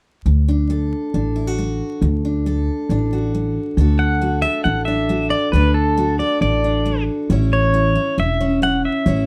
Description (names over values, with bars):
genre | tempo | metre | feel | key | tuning
honky-tonk and classic country | 136 BPM | 4/4 | straight | D major | A4 = 440 Hz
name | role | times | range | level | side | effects
picked steel-string acoustic guitar | accompaniment | 0.3-9.3 s | A2 to C#5 | -24 LUFS | equal | none
upright bass | bass | 0.3-9.3 s | E1 to D2 | -21 LUFS | equal | none
pedal steel guitar | melody | 4.0-9.3 s | A4 to F#5 | -22 LUFS | equal | none
room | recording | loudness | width
light reverb | dark, warm production, vinyl crackle | -19 LUFS | mono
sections
0.3-3.8 A section; 3.8-9.3 B section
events
none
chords
0.3 D; 7.3 A